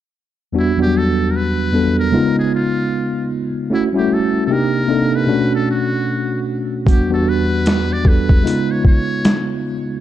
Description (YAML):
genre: lo-fi hip hop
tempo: 76 BPM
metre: 4/4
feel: swing 60% on 16ths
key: unclear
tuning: A4 = 441 Hz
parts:
  - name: mellow tine electric piano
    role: accompaniment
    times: 0.5-10.0 s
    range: E2 to A4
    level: -16 LUFS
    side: equal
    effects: slow stereo tremolo, low-pass filter
  - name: trumpet with metal mute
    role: melody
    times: 0.6-9.6 s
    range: E4 to D5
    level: -25 LUFS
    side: left 1 dB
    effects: low-pass filter
  - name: boom bap sampler-style drum kit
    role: drums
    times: 6.9-9.5 s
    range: hi-hat, kick drum, snare drum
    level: -13 LUFS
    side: equal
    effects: overdrive, vintage 12-bit sampler grit
room: light reverb, digital ambience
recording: dark, warm production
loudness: -14 LUFS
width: side -12 dB against mid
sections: 0.6-10.0 A section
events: none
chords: 0.6 Em7; 2.1 C#7; 3.7 F#m7; 4.5 Cm7; 5.3 Bm7; 6.9 Em7; 8.4 C#7